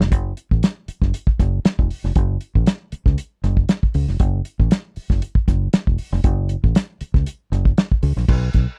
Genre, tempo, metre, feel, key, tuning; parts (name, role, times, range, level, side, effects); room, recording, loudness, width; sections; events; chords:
funk; 118 BPM; 4/4; straight; A4 = 444 Hz
fingered electric bass; bass; 0.0-8.6 s; E1 to C#2; -22 LUFS; equal
cloth-damped thuddy drum kit; drums; 0.0-8.7 s; crash cymbal, hi-hat, kick drum, snare drum; -19 LUFS; equal
little or no reverb; dry, close 1970s-style studio recording; -20 LUFS; mono
0.0-8.3 A section